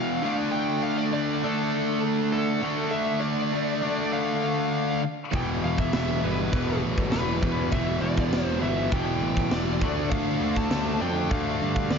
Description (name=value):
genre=heavy metal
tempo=100 BPM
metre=4/4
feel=straight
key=unclear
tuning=A4 = 442 Hz
part: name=high-gain lead guitar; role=melody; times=0.0-12.0 s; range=A4 to A5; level=-30 LUFS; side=left 1 dB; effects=distortion
part: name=distorted electric guitar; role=riff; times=0.0-12.0 s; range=E2 to D4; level=-32 LUFS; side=equal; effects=overdrive, slapback echo
part: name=high-gain distorted guitar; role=riff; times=0.0-12.0 s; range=E2 to D4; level=-30 LUFS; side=left 9 dB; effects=distortion, slapback echo
part: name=tight distorted guitar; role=riff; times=0.0-12.0 s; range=E2 to D4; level=-30 LUFS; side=right 10 dB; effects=distortion, slapback echo
part: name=fuzz picked electric bass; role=bass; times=5.3-12.0 s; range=E1 to G2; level=-30 LUFS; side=equal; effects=overdrive
part: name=tight metal drum kit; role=drums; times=5.3-12.0 s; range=crash cymbal, kick drum, snare drum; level=-29 LUFS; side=equal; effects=none
room=moderate lush hall reverb, RT60 1.8 s, small room reverb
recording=big arena sound, nothing above 7.5 kHz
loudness=-23 LUFS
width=side -6 dB against mid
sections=0.0-12.0 A section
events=none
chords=0.2 Dm; 5.3 Em; 9.8 Dm